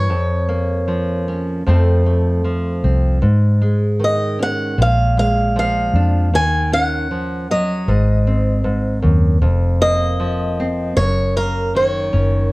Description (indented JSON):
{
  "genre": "acoustic folk-pop ballad",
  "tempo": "77 BPM",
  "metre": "4/4",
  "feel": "straight",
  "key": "Bb minor",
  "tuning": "A4 = 440 Hz",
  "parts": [
    { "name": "picked swing-style acoustic guitar", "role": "melody", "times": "0.0-12.5 s", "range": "Bb4 to Ab5", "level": "-20 LUFS", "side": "equal", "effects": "plate reverb" },
    { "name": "nylon-string guitar", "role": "accompaniment", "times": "0.0-12.5 s", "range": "F2 to A4", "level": "-20 LUFS", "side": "right 1 dB", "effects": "none" },
    { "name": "vintage muted fingered electric bass", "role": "bass", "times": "0.0-12.5 s", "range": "F1 to Ab2", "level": "-17 LUFS", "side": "equal", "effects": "none" }
  ],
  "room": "light reverb",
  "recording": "worn, warbling old tape, cassette tape, warbly pitch drift",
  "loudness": "-15 LUFS",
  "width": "side -22 dB against mid",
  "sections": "0.0-12.5 A section",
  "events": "none",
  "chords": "0.1 Bbm/F; 1.7 F; 3.2 Absus4; 4.8 Bb7; 6.3 Ebm7; 7.9 Ab7; 9.4 Fsus4; 11.0 Ebm7/Gb"
}